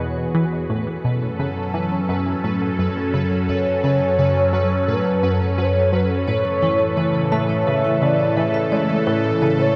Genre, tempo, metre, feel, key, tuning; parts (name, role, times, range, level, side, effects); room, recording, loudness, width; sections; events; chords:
ambient, sequencer-driven space music; 86 BPM; 4/4; straight; F# minor; A4 = 440 Hz
expressive synth lead; melody; 0.0-9.8 s; A4 to E5; -25 LUFS; equal; lush chorus, shimmer reverb, tape echo
phased analog pad; sustained chords; 0.0-9.8 s; E2 to A4; -24 LUFS; equal; phaser, chorus, shimmer reverb
tight sequenced synth; riff; 0.0-9.7 s; F#2 to A3; -26 LUFS; equal; chorus, shimmer reverb, tape echo
pulsing gated texture; texture; 0.0-9.8 s; B4; -35 LUFS; equal; chorus, built-in reverb, shimmer reverb
vibraphone with medium hard mallets; arpeggios; 6.3-9.8 s; E4 to A5; -26 LUFS; equal; shimmer reverb, tape echo
wet huge ambient reverb, RT60 8.4 s; cassette tape; -20 LUFS; mono
0.0-9.8 A section
0.0 Eadd9; 0.7 F#m; 6.3 A